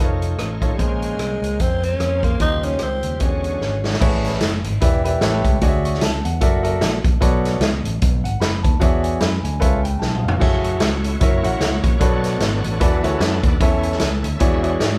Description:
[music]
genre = uptempo gospel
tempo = 150 BPM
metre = 4/4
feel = swing 57% on 8ths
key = A major from 4.0 s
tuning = A4 = 438 Hz
[part]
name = clear baby grand piano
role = accompaniment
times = 0.0-15.0 s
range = A2 to C#6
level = -26 LUFS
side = equal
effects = none
[part]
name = bright tonewheel organ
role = sustained chords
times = 0.0-4.0, 10.4-15.0 s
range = Db3 to A5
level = -32 LUFS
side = equal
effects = slow rotary speaker, overdrive, chorus vibrato
[part]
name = fingered electric bass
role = bass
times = 0.0-15.0 s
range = E1 to G#2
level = -25 LUFS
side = equal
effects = none
[part]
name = swinging big-band drum kit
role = drums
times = 0.2-14.9 s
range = crash cymbal, hi-hat, kick drum, rim click, snare drum, splash cymbal, toms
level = -22 LUFS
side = equal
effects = none
[part]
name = growling tenor saxophone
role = melody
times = 0.7-3.9 s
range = G3 to Eb4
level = -26 LUFS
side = equal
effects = none
[sound]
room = moderate large studio reverb, RT60 1.2 s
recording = band playing live in one room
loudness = -19 LUFS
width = mono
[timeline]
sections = 0.0-4.0 A section; 4.0-15.0 B section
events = drum fill 3.6-4.0, 10.0-10.4; tonewheel organ fill 13.0-13.6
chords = 0.0 Faug7; 0.8 Bbm9; 2.4 Eb13; 3.2 E13; 4.0 Amaj9; 4.8 Em7; 5.2 A9; 5.6 Dmaj9#11; 6.4 F#7alt; 7.2 Bm9; 8.8 E13; 9.6 C#7alt; 10.4 F#m9; 11.2 F#7; 12.0 Bm9; 12.8 E9sus4; 13.6 A/E; 14.4 E13

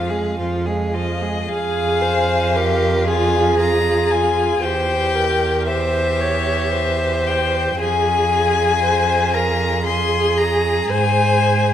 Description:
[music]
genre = classical, slow romantic movement for string quartet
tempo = 57 BPM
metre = 3/4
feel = rubato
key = F minor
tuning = A4 = 440 Hz
[part]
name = rich violin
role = melody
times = 0.0-11.7 s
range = Eb5 to C6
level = -21 LUFS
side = left 7 dB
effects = none
[part]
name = clear violin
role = second line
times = 0.0-11.7 s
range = F4 to Ab4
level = -24 LUFS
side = left 2 dB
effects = none
[part]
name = warm viola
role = accompaniment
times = 0.0-11.7 s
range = F3 to Db5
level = -21 LUFS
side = right 2 dB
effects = none
[part]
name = clear cello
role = bass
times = 0.0-11.7 s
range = E2 to Ab2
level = -22 LUFS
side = right 3 dB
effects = none
[sound]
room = wet recital hall reverb, RT60 1.3 s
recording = none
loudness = -16 LUFS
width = side -10 dB against mid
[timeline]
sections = 0.0-1.5 A section; 1.5-11.7 B section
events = none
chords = 0.0 Fm; 4.6 C/E; 7.8 Fm; 10.9 Fm/Ab (rootless)

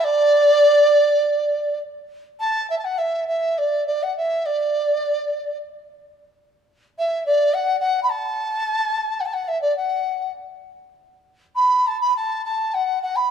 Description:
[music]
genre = chinese traditional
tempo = 104 BPM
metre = 4/4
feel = rubato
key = D gong mode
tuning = A4 = 440 Hz
[part]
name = mellow large dizi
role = solo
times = 0.0-13.3 s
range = D5 to B5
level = -18 LUFS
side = equal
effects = none
[sound]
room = moderate concert hall reverb, RT60 2.1 s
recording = close, detailed microphones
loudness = -18 LUFS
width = side -8 dB against mid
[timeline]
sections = 0.0-2.4 A section; 2.4-13.3 B section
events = none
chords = none

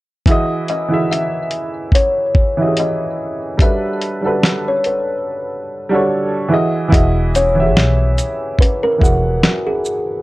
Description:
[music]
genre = lo-fi hip hop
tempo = 72 BPM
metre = 4/4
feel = swing 56% on 16ths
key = unclear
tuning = A4 = 440 Hz
[part]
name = warm upright piano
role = accompaniment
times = 0.3-10.2 s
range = E3 to F#5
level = -18 LUFS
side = right 1 dB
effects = cassette tape, low-pass filter
[part]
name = lo-fi sampler-style drum kit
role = drums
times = 0.3-10.1 s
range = hi-hat, kick drum, shaker, snare drum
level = -14 LUFS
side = equal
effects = none
[part]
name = kalimba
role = melody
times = 0.7-10.2 s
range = F#4 to E5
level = -20 LUFS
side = left 1 dB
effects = low-pass filter
[part]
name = upright bass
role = bass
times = 6.9-9.4 s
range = E1 to B1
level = -16 LUFS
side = equal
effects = none
[sound]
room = light reverb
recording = none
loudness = -14 LUFS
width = side -19 dB against mid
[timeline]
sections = 0.3-6.9 A section; 6.9-10.2 B section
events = drums muted 5.3-6.9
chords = 0.3 Emaj9; 3.6 Gmaj9; 6.5 Emaj9

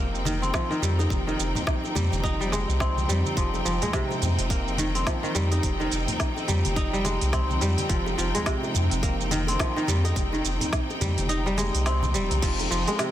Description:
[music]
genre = organic downtempo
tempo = 106 BPM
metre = 4/4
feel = swing 59% on 16ths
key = F minor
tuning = A4 = 439 Hz
[part]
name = bright studio string section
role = sustained chords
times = 0.0-13.1 s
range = F3 to G5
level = -31 LUFS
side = equal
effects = sidechain pumping
[part]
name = kora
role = arpeggios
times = 0.0-13.1 s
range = C3 to Eb4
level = -28 LUFS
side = equal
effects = digital delay
[part]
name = warm sub bass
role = bass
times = 0.0-12.8 s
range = Eb1 to F2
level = -26 LUFS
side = equal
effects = sidechain pumping
[part]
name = organic electronic drum kit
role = drums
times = 0.2-13.1 s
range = crash cymbal, hi-hat, shaker, snare drum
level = -32 LUFS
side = right 3 dB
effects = studio reverb
[part]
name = congas and bongos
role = percussion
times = 0.3-13.0 s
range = none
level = -35 LUFS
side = left 2 dB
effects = none
[part]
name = electronic kick drum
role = drums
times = 0.5-12.6 s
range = none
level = -28 LUFS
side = equal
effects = studio reverb
[sound]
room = little or no reverb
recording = dense, heavily limited modern master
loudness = -23 LUFS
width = side -12 dB against mid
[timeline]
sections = 0.0-12.4 A section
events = kick drops out 11.3-12.4; band accent 11.9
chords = 0.0 Fm7

